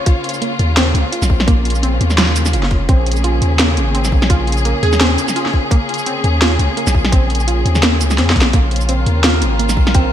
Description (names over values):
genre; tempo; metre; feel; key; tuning
half-time drum and bass; 170 BPM; 4/4; swing 55% on 16ths, half-time; Bb minor; A4 = 441 Hz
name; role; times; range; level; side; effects
plucky unison lead; melody; 0.0, 4.8-5.0 s; Ab4; -25 LUFS; right 1 dB; lush chorus, ping-pong delay
warm studio string section; sustained chords; 0.0-10.1 s; Db3 to Ab4; -21 LUFS; left 2 dB; sidechain pumping
warbly dusty pluck; arpeggios; 0.1-10.1 s; Bb3 to F4; -23 LUFS; right 2 dB; chorus, cassette tape, ping-pong delay
drum and bass drum kit; drums; 0.1-10.0 s; hi-hat, shaker, snare drum; -17 LUFS; equal; gated reverb
electronic kick drum; drums; 0.1-10.0 s; none; -13 LUFS; equal; none
long sustained 808-style bass; bass; 0.6-10.1 s; F1 to F2; -16 LUFS; equal; tube saturation
metallic inharmonic drone; texture; 8.9-10.1 s; Bb4; -24 LUFS; right 2 dB; chorus, built-in reverb, phaser
room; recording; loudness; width
light reverb, digital ambience; bright 1980s-style digital production; -12 LUFS; side -10 dB against mid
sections
0.0-10.1 A section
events
drum fill 8.2-8.5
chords
0.0 Bbmadd9